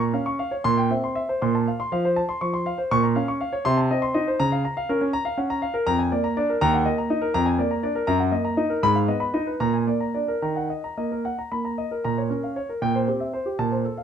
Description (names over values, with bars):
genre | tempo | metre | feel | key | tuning
classical, baroque-style suite movement for grand piano | 80 BPM (dotted quarters) | 6/8 | rubato | Bb minor, Eb minor from 5.9 s | A4 = 440 Hz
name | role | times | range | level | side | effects
warm grand piano | solo | 0.0-14.0 s | Eb2 to Db6 | -21 LUFS | equal | none
room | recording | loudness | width
moderate stone room reverb, RT60 1.0 s | none | -21 LUFS | side -8 dB against mid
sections
0.0-12.0 A section; 12.0-14.0 A section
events
none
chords
0.0 Bbm; 0.7 C7/Bb; 1.4 F/Bb; 2.9 Bbm; 3.6 Adim/C; 4.4 Bbm/Db; 5.9 Bb7/F; 6.6 Ebm; 7.3 Bb7/F; 8.1 Ebm/Gb; 8.8 Fm7b5/Ab; 9.6 Bb7; 10.4 Ebm; 12.0 Bbm; 12.8 C7/Bb